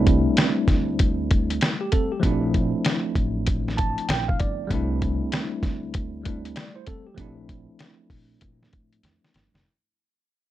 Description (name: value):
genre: hip hop, jazz-hop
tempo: 97 BPM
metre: 4/4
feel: swing 64% on 16ths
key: unclear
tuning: A4 = 441 Hz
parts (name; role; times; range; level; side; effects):
- mellow tine electric piano; accompaniment; 0.0-9.6 s; F3 to A5; -26 LUFS; equal; medium stereo tremolo
- upright bass; bass; 0.0-9.6 s; F1 to Bb2; -28 LUFS; equal; none
- lo-fi sampler-style drum kit; drums; 0.1-9.6 s; hi-hat, kick drum, snare drum; -23 LUFS; equal; none
room: moderate studio ambience, RT60 0.5 s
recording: dark, warm production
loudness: -21 LUFS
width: side -13 dB against mid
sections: 0.0-9.7 A section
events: fade-out 0.0-9.7; tine electric piano fill 3.5-4.7; drum fill 9.0-9.7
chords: 0.0 C69; 2.2 Bbmaj9#11; 4.7 C69; 7.2 Bbmaj9#11